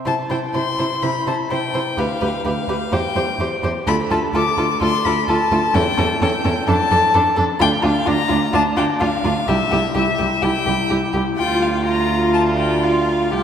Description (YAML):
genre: quick classical-period movement for string quartet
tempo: 127 BPM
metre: 4/4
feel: rubato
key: C major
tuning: A4 = 439 Hz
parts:
  - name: warm violin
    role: melody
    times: 0.1-13.4 s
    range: E5 to D6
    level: -21 LUFS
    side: left 4 dB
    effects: none
  - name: warm violin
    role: second line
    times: 0.1-13.4 s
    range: F4 to C5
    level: -24 LUFS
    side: left 1 dB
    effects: none
  - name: rich viola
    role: accompaniment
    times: 0.1-13.4 s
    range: C#4 to G4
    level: -23 LUFS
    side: right 1 dB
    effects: none
  - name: rich cello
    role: bass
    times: 0.1-13.4 s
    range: C2 to C3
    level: -22 LUFS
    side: right 3 dB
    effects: none
room: wet church reverb, RT60 3.2 s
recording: none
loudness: -16 LUFS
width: side -8 dB against mid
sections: 0.1-13.4 A section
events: none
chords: 0.1 C; 2.0 G7/D; 2.9 C/E; 3.9 Dm; 5.7 A7/E; 6.7 Dm/F; 7.6 Bb/D; 9.5 C; 11.4 Bb/D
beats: | 0.06 0.54 1.02 1.50 | 1.98 2.45 2.92 3.39 | 3.87 4.34 4.81 5.28 | 5.74 6.21 6.68 7.14 | 7.61 8.07 8.54 9.01 | 9.48 9.96 10.43 10.91 | 11.38 11.86 12.33 12.82 | 13.32